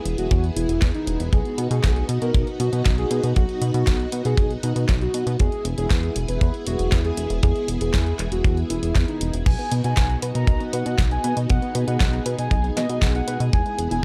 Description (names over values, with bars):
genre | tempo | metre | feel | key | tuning
italo disco | 118 BPM | 4/4 | straight | B major | A4 = 440 Hz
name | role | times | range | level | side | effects
string machine, full ensemble | sustained chords | 0.0-14.0 s | B3 to G#4 | -32 LUFS | equal | ensemble chorus
chorused synth bass | bass | 0.1-14.0 s | E1 to B2 | -26 LUFS | equal | tube saturation
house drum kit | drums | 0.1-14.0 s | crash cymbal, handclaps, hi-hat, snare drum | -33 LUFS | equal | small room ambience
soft octave-layered synth lead | melody | 0.2-14.0 s | D#4 to A#5 | -31 LUFS | equal | chorus, analog delay
kick drum | drums | 0.3-13.6 s | none | -22 LUFS | equal | small room ambience
soft round pluck | arpeggios | 9.5-14.0 s | G#3 to A#5 | -34 LUFS | equal | chorus, cassette tape, tape echo
room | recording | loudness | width
little or no reverb | dry, gritty hardware recording | -22 LUFS | mono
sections
0.0-9.5 A section; 9.5-14.0 A section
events
none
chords
0.0 E; 1.3 B; 5.4 E; 9.5 B; 13.5 E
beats
0.31 0.82 | 1.33 1.83 2.34 2.85 | 3.36 3.87 4.38 4.89 | 5.39 5.90 6.41 6.92 | 7.43 7.94 8.45 8.95 | 9.46 9.97 10.48 10.99 | 11.50 12.01 12.51 13.02 | 13.53 14.04